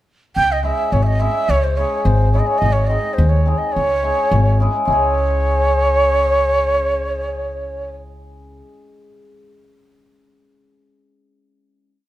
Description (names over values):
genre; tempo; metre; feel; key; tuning
balkan folk; 106 BPM; 2/4; straight; C# minor; A4 = 440 Hz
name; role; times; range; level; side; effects
breathy reedy ney; melody; 0.4-7.9 s; B#4 to G5; -18 LUFS; right 2 dB; slapback echo, plate reverb
upright bass; bass; 0.4-8.6 s; G#1 to D#2; -18 LUFS; left 1 dB; none
cimbalom; accompaniment; 0.6-9.4 s; G#3 to G#4; -22 LUFS; left 2 dB; none
room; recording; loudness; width
light reverb; close, detailed microphones; -15 LUFS; side -14 dB against mid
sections
0.3-4.9 A section; 4.9-7.1 final chord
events
none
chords
0.3 C#m; 2.6 G#; 3.7 C#m